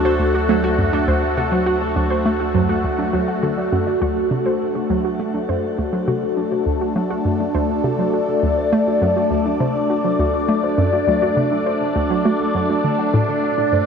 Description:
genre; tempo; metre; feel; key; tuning
ambient, sequencer-driven space music; 102 BPM; 4/4; straight; unclear; A4 = 440 Hz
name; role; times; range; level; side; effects
phased analog pad; sustained chords; 0.0-13.9 s; Bb2 to D5; -20 LUFS; left 1 dB; phaser, chorus, shimmer reverb
round analog bass; bass; 0.0-4.0 s; D2; -27 LUFS; equal; none
pulsing gated texture; texture; 0.0-13.9 s; A3 to A4; -28 LUFS; left 4 dB; chorus, built-in reverb, shimmer reverb
warbly dusty pluck; arpeggios; 0.1-13.8 s; F#3 to F#5; -24 LUFS; right 3 dB; chorus, auto-pan, analog delay, shimmer reverb
hollow square pluck; riff; 0.2-13.9 s; D2 to A3; -23 LUFS; right 1 dB; chorus, analog delay
room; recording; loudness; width
wet huge ambient reverb, RT60 8.5 s; in a vast, echoing space; -16 LUFS; side -6 dB against mid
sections
0.0-4.0 A section; 4.0-13.9 B section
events
none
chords
0.0 D

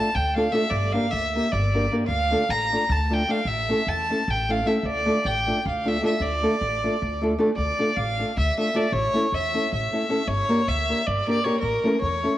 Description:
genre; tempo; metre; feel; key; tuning
balkan folk, Balkan wedding band; 308 BPM (eighths); 7/8; straight; D harmonic minor; A4 = 440 Hz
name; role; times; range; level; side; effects
clear violin; melody; 0.0-12.4 s; Bb4 to Bb5; -24 LUFS; equal; cassette tape
nylon-string guitar; accompaniment; 0.0-12.3 s; A3 to Bb4; -25 LUFS; equal; none
upright bass; bass; 0.2-12.3 s; G1 to E2; -28 LUFS; equal; none
room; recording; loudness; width
moderate lush hall reverb, RT60 2.5 s; home recording on cassette; -21 LUFS; side -13 dB against mid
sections
0.0-7.6 A section; 7.6-12.4 B section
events
none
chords
0.0 Dm; 0.7 Gm; 2.1 Dm; 3.5 A; 4.8 Dm; 8.9 A; 10.3 Gm; 11.6 A

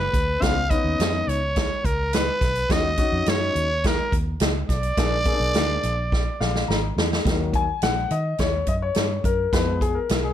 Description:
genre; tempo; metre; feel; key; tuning
uptempo 1960s-style soul; 105 BPM; 4/4; straight; Eb minor from 7.3 s; A4 = 444 Hz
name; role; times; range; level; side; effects
growling trumpet; melody; 0.0-6.6 s; Bb4 to F5; -24 LUFS; right 1 dB; plate reverb
vintage muted fingered electric bass; bass; 0.0-10.3 s; Ab1 to Eb3; -27 LUFS; equal; none
swinging big-band drum kit; drums; 0.1-10.2 s; hi-hat, kick drum, snare drum; -24 LUFS; right 1 dB; none
warm concert grand piano; accompaniment; 0.4-10.3 s; Eb3 to Bb5; -26 LUFS; left 6 dB; none
room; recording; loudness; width
light reverb; none; -20 LUFS; side -10 dB against mid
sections
0.0-7.3 A section; 7.3-10.3 B section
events
drum fill 6.1-7.3; grand piano fill 6.1-7.3; grand piano solo 7.3-10.3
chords
0.4 Db7; 2.7 Ebm7; 5.0 Bb7; 7.3 Ebm; 9.5 Fdim

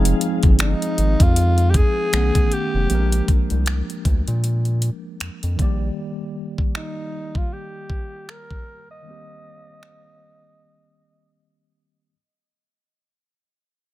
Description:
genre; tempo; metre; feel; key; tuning
contemporary R&B; 78 BPM; 4/4; swing 58% on 16ths; unclear; A4 = 440 Hz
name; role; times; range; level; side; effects
tine electric piano; accompaniment; 0.0-12.1 s; D#3 to F#5; -26 LUFS; equal; medium stereo tremolo, low-pass filter
round analog bass; bass; 0.0-5.9 s; F1 to Bb2; -19 LUFS; equal; none
trap drum kit; drums; 0.1-10.0 s; finger snaps, hi-hat, kick drum; -19 LUFS; equal; none
breathy alto saxophone; melody; 0.6-11.3 s; Eb4 to Eb5; -27 LUFS; equal; low-pass filter
room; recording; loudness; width
little or no reverb; none; -18 LUFS; side -15 dB against mid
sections
0.0-12.1 A section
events
fade-out 0.0-12.1; filter sweep 0.0-12.1; break 10.6-12.1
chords
0.0 Fm7; 2.1 B9; 2.9 Bb7; 5.6 Ebmaj7/Bb; 9.1 Cm7

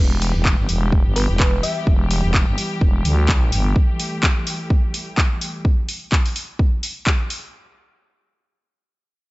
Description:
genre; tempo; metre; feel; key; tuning
bass house; 127 BPM; 4/4; swing 56% on 16ths; E minor; A4 = 441 Hz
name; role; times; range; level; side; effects
muted studio string section; sustained chords; 0.0-5.6 s; E3 to G4; -28 LUFS; left 1 dB; sidechain pumping, low-pass filter
growling FM bass; bass; 0.0-3.7 s; E1 to D2; -19 LUFS; equal; tube saturation, sidechain pumping
house drum kit; drums; 0.2-7.4 s; handclaps, hi-hat; -24 LUFS; equal; studio reverb
electronic kick drum; drums; 0.5-7.2 s; none; -17 LUFS; equal; studio reverb
thumb-piano-like synth pluck; melody; 1.2-1.8 s; B4 to E5; -28 LUFS; equal; chorus, dub echo
room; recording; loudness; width
little or no reverb; nothing above 7.8 kHz; -17 LUFS; side -21 dB against mid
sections
0.0-7.5 A section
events
none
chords
0.0 Em

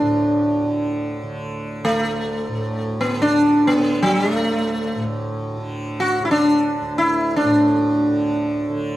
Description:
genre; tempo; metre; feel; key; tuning
indian classical, Hindustani; free time; none; none; unclear; A4 = 440 Hz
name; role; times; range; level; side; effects
sitar; melody; 0.0-8.5 s; A3 to F#4; -18 LUFS; equal; slapback echo
tanpura; drone; 0.0-9.0 s; D2 to D3; -26 LUFS; right 1 dB; none
room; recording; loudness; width
moderate recital hall reverb, RT60 1.4 s; none; -17 LUFS; side -15 dB against mid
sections
0.0-9.0 A section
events
none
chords
none

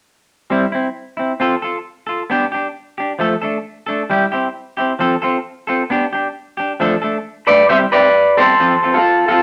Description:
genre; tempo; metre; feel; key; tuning
highlife; 133 BPM; 4/4; swing 53% on 16ths; C major; A4 = 440 Hz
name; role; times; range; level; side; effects
semi-hollow electric guitar; accompaniment; 0.5-9.4 s; F3 to A4; -20 LUFS; equal; none
electric guitar through a small old amp; melody; 7.5-9.4 s; F4 to E5; -13 LUFS; equal; none
room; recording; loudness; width
wet studio reverb, RT60 0.7 s; none; -17 LUFS; mono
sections
0.5-7.7 A section; 7.7-9.4 B section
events
none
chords
0.5 C; 1.4 F; 2.3 G; 3.2 Dm; 4.1 C; 5.0 F; 5.9 G; 6.8 Dm; 7.7 C; 8.6 F

